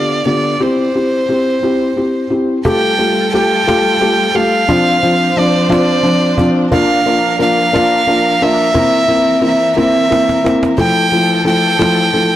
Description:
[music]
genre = six-eight pop ballad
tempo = 59 BPM (dotted quarters)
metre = 6/8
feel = straight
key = F major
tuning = A4 = 440 Hz
[part]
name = warm violin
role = melody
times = 0.0-12.4 s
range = C5 to G5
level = -14 LUFS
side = right 1 dB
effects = tape echo
[part]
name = felt-muted upright piano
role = accompaniment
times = 0.0-12.4 s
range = D3 to G4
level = -14 LUFS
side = left 1 dB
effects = none
[part]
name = warm studio string section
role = sustained chords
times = 2.7-12.4 s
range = E3 to C5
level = -21 LUFS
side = right 2 dB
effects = none
[part]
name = cajon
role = drums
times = 2.7-12.2 s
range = none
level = -22 LUFS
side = right 1 dB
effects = none
[sound]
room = moderate echo chamber reverb, RT60 2.5 s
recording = blown-out, overdriven recording, overdrive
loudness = -10 LUFS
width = side -12 dB against mid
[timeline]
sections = 0.0-2.7 A section; 2.7-12.4 B section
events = drum fill 9.8-10.8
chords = 0.0 G7/D; 0.6 C; 2.7 Fadd9; 4.7 Dm7/F; 6.7 Bb; 8.8 C7; 10.8 Fmaj7

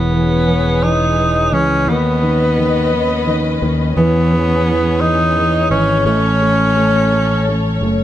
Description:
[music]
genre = pop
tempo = 57 BPM (dotted quarters)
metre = 6/8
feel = straight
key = E major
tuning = A4 = 441 Hz
[part]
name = clear tenor saxophone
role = melody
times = 0.0-7.8 s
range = B3 to D#4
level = -17 LUFS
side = equal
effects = digital delay
[part]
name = dark upright piano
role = accompaniment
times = 0.0-8.0 s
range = D#3 to A3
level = -19 LUFS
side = right 1 dB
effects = none
[part]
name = warm studio string section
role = sustained chords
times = 0.0-8.0 s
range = C#4 to D#5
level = -22 LUFS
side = left 4 dB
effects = none
[part]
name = fretless electric bass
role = bass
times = 0.0-8.0 s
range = E1 to E2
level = -17 LUFS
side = equal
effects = none
[sound]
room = moderate echo chamber reverb, RT60 1.5 s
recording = none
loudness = -12 LUFS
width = side -12 dB against mid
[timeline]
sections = 0.0-8.0 A section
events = none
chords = 0.0 E6; 1.9 Badd9/D#; 4.0 E6; 6.1 A

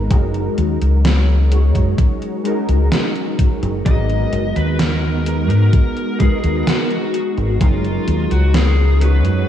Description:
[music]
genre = vaporwave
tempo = 64 BPM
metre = 4/4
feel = straight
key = F# major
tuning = A4 = 440 Hz
[part]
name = warbly lo-fi synth keys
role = accompaniment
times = 0.0-9.5 s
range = F#3 to C#5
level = -22 LUFS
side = equal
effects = ensemble chorus, vintage 12-bit sampler grit, diffuse ambient delay
[part]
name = warbly tape-like pad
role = sustained chords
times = 0.0-9.5 s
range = F#3 to A#5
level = -27 LUFS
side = right 1 dB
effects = chorus, built-in reverb
[part]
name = deep dub fingered electric bass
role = bass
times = 0.0-9.4 s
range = F#1 to G#2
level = -15 LUFS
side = equal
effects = none
[part]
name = electronic kick drum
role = drums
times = 0.1-7.8 s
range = none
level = -15 LUFS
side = equal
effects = overdrive
[part]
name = gated 80s digital drum machine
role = drums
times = 0.1-9.4 s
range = hi-hat, snare drum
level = -22 LUFS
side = right 1 dB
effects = gated reverb, gated reverb snare, overdrive
[part]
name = smooth overdriven lead guitar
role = melody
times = 3.9-9.5 s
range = E#4 to D#5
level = -24 LUFS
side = left 2 dB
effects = tape echo
[sound]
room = moderate lush hall reverb, RT60 2.6 s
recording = dreamy mix soaked in reverb, cassette tape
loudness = -14 LUFS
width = side -10 dB against mid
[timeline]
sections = 0.0-9.5 A section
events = none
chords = 0.1 F#69; 3.9 G#m9; 7.6 F#69

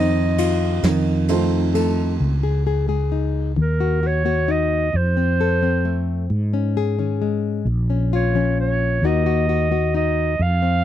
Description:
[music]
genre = acoustic folk-pop ballad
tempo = 44 BPM (dotted quarters)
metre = 6/8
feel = straight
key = unclear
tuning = A4 = 440 Hz
[part]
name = clear clarinet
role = melody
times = 0.0-10.8 s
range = Bb4 to F5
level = -23 LUFS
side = right 5 dB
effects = none
[part]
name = nylon-string guitar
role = accompaniment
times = 0.0-10.8 s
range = F2 to A4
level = -24 LUFS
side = left 12 dB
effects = none
[part]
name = felt-muted upright piano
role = arpeggios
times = 0.0-2.3 s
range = Eb3 to F4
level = -23 LUFS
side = right 6 dB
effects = none
[part]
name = mellow fretless electric bass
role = bass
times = 0.0-10.8 s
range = Bb1 to Ab2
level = -20 LUFS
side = equal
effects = none
[part]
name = soft brush drum kit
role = drums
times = 0.4-2.0 s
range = ride cymbal, snare drum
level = -30 LUFS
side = right 3 dB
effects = none
[sound]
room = little or no reverb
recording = dry, close 1970s-style studio recording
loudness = -18 LUFS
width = side -11 dB against mid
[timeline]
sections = 0.0-2.2 A section; 2.2-10.8 B section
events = none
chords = 0.0 F5; 0.8 F7; 2.2 Dbsus2; 3.6 Ebm; 4.9 F; 6.3 Absus4; 7.7 Bbm; 9.0 Ebm

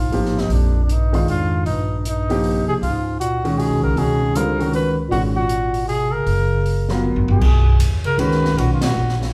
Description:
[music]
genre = modal jazz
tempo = 156 BPM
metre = 3/4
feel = swing 63% on 8ths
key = unclear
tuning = A4 = 445 Hz
[part]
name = breathy trumpet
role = melody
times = 0.0-9.2 s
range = D4 to Cb5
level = -26 LUFS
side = equal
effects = none
[part]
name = mellow bass clarinet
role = second line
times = 0.0-9.2 s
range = F2 to Eb3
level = -26 LUFS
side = equal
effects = none
[part]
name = upright bass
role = bass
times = 0.0-9.3 s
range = Gb1 to F2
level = -23 LUFS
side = equal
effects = none
[part]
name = clear concert grand piano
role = accompaniment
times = 0.1-8.8 s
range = D3 to Bb4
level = -24 LUFS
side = equal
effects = none
[part]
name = open jazz drum kit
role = drums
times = 0.1-9.3 s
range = crash cymbal, hi-hat, kick drum, ride cymbal, snare drum, toms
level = -26 LUFS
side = equal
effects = none
[sound]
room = wet large studio reverb, RT60 1.1 s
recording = band playing live in one room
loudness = -19 LUFS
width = mono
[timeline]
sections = 0.0-7.4 A section; 7.4-9.3 B section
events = drum fill 7.0-7.4; band accent 8.8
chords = 0.0 Bb7sus4; 2.8 Db13sus4; 7.4 G#m11

